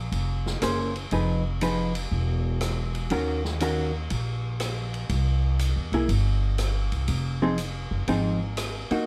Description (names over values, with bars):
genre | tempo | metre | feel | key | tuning
jazz, small-group swing and bop | 120 BPM | 4/4 | swing 68% on 8ths | unclear | A4 = 440 Hz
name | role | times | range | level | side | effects
upright bass | bass | 0.0-8.9 s | E1 to E2 | -29 LUFS | equal | none
swinging big-band drum kit | drums | 0.1-9.0 s | hi-hat, ride cymbal, rim click, snare drum | -36 LUFS | equal | none
vintage hollow-body jazz guitar | accompaniment | 0.6-9.1 s | Eb3 to C5 | -28 LUFS | equal | none
room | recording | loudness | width
little or no reverb | close, detailed microphones | -26 LUFS | mono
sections
0.0-9.1 A section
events
none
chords
0.0 Bbm9; 1.1 Fm7b5; 2.1 N.C.; 3.1 Ebm7; 5.1 C; 7.1 Fm7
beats
0.11 0.61 | 1.11 1.61 2.11 2.61 | 3.11 3.60 4.10 4.60 | 5.10 5.60 6.09 6.59 | 7.09 7.59 8.08 8.58